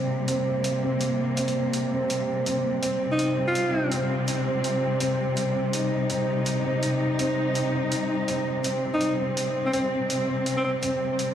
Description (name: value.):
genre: half-time drum and bass.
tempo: 165 BPM.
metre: 4/4.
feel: swing 60% on 16ths, half-time.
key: C minor.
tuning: A4 = 441 Hz.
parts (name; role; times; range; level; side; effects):
dark symphonic cello section; sustained chords; 0.0-11.3 s; C3 to Eb4; -26 LUFS; left 2 dB; none.
felt-muted upright piano; arpeggios; 0.0-11.3 s; C4; -28 LUFS; right 3 dB; low-pass filter, dub echo.
electronic hi-hat; drums; 0.3-11.3 s; none; -33 LUFS; right 1 dB; small room ambience.
bright alto saxophone; melody; 3.1-4.0, 8.9-10.7 s; C4 to F4; -28 LUFS; equal; dub echo.
room: moderate huge ambient reverb, RT60 4.1 s.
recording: played on a big sound system in a bare room, stone room reverb.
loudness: -23 LUFS.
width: side -9 dB against mid.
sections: 0.0-11.3 A section.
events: none.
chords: 0.0 Cm.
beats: 0.28 0.64 1.01 | 1.37 1.74 2.10 2.46 | 2.83 3.19 3.55 3.92 | 4.28 4.64 5.01 5.37 | 5.74 6.10 6.46 6.83 | 7.19 7.55 7.92 8.28 | 8.64 9.01 9.37 9.73 | 10.10 10.46 10.83 11.19.